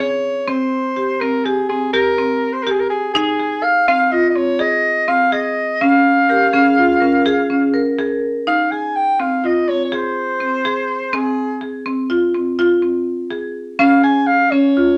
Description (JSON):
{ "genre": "contemporary instrumental, chamber music in an uneven meter", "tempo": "248 BPM (eighths)", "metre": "11/8", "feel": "straight", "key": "F minor", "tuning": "A4 = 441 Hz", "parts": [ { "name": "mellow soprano saxophone", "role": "melody", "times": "0.0-15.0 s", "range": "Ab4 to Ab5", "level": "-19 LUFS", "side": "equal", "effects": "none" }, { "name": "marimba with hard mallets", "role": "arpeggios", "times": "0.0-15.0 s", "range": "C4 to Bb4", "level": "-20 LUFS", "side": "equal", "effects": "none" }, { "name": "vibraphone with medium hard mallets", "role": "second line", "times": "6.3-8.4 s", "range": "G4 to Bb4", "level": "-23 LUFS", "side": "equal", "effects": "none" } ], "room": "moderate studio reverb, RT60 0.6 s", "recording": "none", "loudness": "-17 LUFS", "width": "mono", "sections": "0.0-8.5 A section; 8.5-15.0 B section", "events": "none", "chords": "0.5 C5; 3.1 Fm7; 5.8 Db6; 8.5 Fm; 13.8 Bbm7 (rootless)", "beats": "0.23 | 0.47 0.71 0.96 1.20 1.44 1.69 1.93 2.17 2.42 2.66 2.90 | 3.15 3.39 3.63 3.87 4.12 4.36 4.60 4.84 5.08 5.33 5.57 | 5.81 6.05 6.30 6.54 6.78 7.02 7.26 7.51 7.75 7.99 8.23 | 8.47 8.71 8.96 9.20 9.44 9.68 9.92 10.16 10.41 10.65 10.89 | 11.13 11.37 11.61 11.86 12.10 12.34 12.58 12.82 13.06 13.30 13.55 | 13.79 14.03 14.27 14.51 14.76" }